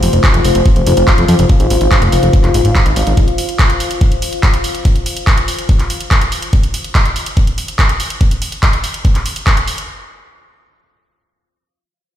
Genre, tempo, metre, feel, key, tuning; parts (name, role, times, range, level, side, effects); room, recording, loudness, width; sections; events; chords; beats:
psychedelic trance; 143 BPM; 4/4; straight; F minor; A4 = 440 Hz
fat analog bass; bass; 0.0-3.1 s; F1 to F2; -12 LUFS; equal
techno drum kit; drums; 0.0-9.9 s; handclaps, hi-hat; -18 LUFS; equal; overdrive
deep dark ambient pad; texture; 0.0-6.5 s; F4 to F5; -18 LUFS; left 3 dB; chorus, built-in reverb, sidechain pumping
electronic kick drum; drums; 0.2-9.6 s; -12 LUFS; equal
light reverb, digital ambience; played on a big sound system in a bare room, stone room reverb; -11 LUFS; side -11 dB against mid
0.0-9.9 A section
0.0 F5
0.23 0.66 1.07 | 1.49 1.91 2.33 2.75 | 3.17 3.59 4.01 4.43 | 4.85 5.27 5.69 6.11 | 6.53 6.95 7.37 7.79 | 8.21 8.63 9.05 9.47